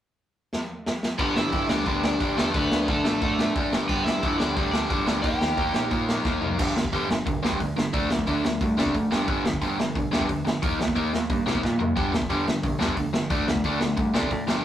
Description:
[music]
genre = punk rock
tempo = 178 BPM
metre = 4/4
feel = straight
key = unclear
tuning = A4 = 439 Hz
[part]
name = raw garage drum kit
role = drums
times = 0.5-14.6 s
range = crash cymbal, hi-hat, kick drum, snare drum, toms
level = -26 LUFS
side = equal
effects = none
[part]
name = overdriven semi-hollow guitar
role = melody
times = 1.2-5.9 s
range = A3 to G5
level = -28 LUFS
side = equal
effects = none
[part]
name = overdriven electric guitar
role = riff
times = 1.2-14.6 s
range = G2 to Eb4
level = -25 LUFS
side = equal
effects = none
[part]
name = growling picked electric bass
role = bass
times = 1.2-14.6 s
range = F#1 to C3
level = -33 LUFS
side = equal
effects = overdrive
[sound]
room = light reverb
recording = rough rehearsal-room recording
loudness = -22 LUFS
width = side -11 dB against mid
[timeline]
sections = 0.0-1.2 A section; 1.2-6.6 B section; 6.6-14.6 C section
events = drum fill 0.5-1.2, 6.3-6.6, 11.6-12.0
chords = 0.0 N.C.; 1.2 G; 2.5 D5; 3.7 G5; 5.2 Eb; 6.6 G5; 7.9 D5; 9.1 G5; 10.6 Eb5; 12.0 G5; 13.3 D5

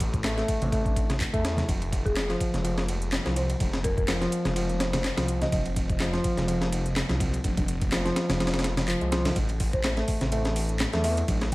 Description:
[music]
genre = breakbeat, breaks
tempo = 125 BPM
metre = 4/4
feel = swing 55% on 16ths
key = unclear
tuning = A4 = 440 Hz
[part]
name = barky reed electric piano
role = riff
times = 0.0-11.5 s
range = Eb3 to E4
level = -30 LUFS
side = equal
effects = overdrive, dub echo
[part]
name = phased detuned saw bass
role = bass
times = 0.0-11.5 s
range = F1 to E2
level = -29 LUFS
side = equal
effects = phaser
[part]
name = breakbeat sampler-style drum kit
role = drums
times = 0.0-11.5 s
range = kick drum, ride cymbal, snare drum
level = -29 LUFS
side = equal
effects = none
[part]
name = house drum kit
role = drums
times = 0.0-11.5 s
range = handclaps, hi-hat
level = -36 LUFS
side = equal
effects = overdrive
[part]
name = congas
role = percussion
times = 0.6-11.4 s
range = none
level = -34 LUFS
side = right 1 dB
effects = none
[part]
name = folk marimba with medium mallets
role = melody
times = 2.1-5.6, 9.7-11.5 s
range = Ab4 to E5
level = -35 LUFS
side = equal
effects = telephone sound, dub echo
[sound]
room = digital ambience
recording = vinyl crackle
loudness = -24 LUFS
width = side -20 dB against mid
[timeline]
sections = 0.0-11.5 A section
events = none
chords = 0.0 Am; 1.7 Fm; 9.4 Am

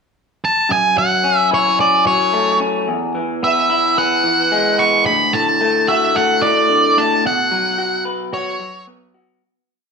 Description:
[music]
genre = post-rock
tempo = 110 BPM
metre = 4/4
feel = straight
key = unclear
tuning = A4 = 442 Hz
[part]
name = octave-fuzz lead guitar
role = melody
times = 0.4-8.8 s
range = C#5 to C#6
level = -15 LUFS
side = right 2 dB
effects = distortion
[part]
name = electric guitar through a small old amp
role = arpeggios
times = 0.7-9.4 s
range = D2 to B4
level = -18 LUFS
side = left 3 dB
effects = none
[sound]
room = wet large studio reverb, RT60 1.2 s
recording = band playing live in one room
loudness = -13 LUFS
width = side -5 dB against mid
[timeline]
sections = 0.0-0.7 pickup bar; 0.7-9.4 A section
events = fade-out 7.2-9.4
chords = 0.0 N.C.; 0.7 F#m7; 2.9 Eadd9; 5.1 D; 7.2 Bsus2

